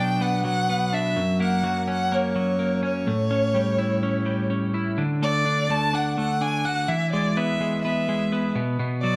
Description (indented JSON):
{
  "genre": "indie pop",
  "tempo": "126 BPM",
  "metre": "4/4",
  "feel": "straight",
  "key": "unclear",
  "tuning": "A4 = 440 Hz",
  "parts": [
    { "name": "clear violin", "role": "melody", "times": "0.0-9.2 s", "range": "C#5 to A5", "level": "-28 LUFS", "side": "equal", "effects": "none" },
    { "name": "twelve-string electric guitar", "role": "arpeggios", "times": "0.0-9.2 s", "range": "F#2 to F#4", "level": "-26 LUFS", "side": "equal", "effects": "none" }
  ],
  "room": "wet echo chamber reverb, RT60 1.7 s, studio reverb",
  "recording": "dark, warm production",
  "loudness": "-24 LUFS",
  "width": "mono",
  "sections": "0.0-5.0 A section; 5.0-9.2 B section",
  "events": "none",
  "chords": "0.0 Bm; 1.2 F#; 3.1 A7; 5.0 D; 6.9 E; 8.6 Bm"
}